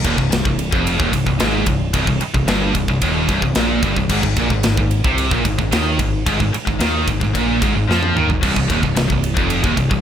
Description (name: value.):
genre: heavy metal.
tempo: 111 BPM.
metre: 4/4.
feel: straight.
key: C minor.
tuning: A4 = 440 Hz.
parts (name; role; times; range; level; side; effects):
scooped high-gain guitar; riff; 0.0-10.0 s; C2 to F3; -21 LUFS; left 8 dB; distortion.
scooped high-gain guitar; riff; 0.0-10.0 s; C2 to F3; -20 LUFS; right 8 dB; distortion.
growling picked electric bass; bass; 0.0-10.0 s; C1 to F2; -22 LUFS; equal; overdrive.
tight metal drum kit; drums; 0.0-10.0 s; crash cymbal, kick drum, ride cymbal, snare drum, toms; -20 LUFS; equal; none.
room: light reverb.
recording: none.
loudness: -15 LUFS.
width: side -9 dB against mid.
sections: 0.0-10.0 A section.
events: drum fill 7.9-8.4.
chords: 0.0 Cm; 4.1 Ab5; 8.4 Cm.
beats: 0.31 0.85 1.40 | 1.94 2.48 3.02 3.56 | 4.10 4.64 5.18 5.72 | 6.26 6.80 7.34 7.88 | 8.42 8.96 9.50.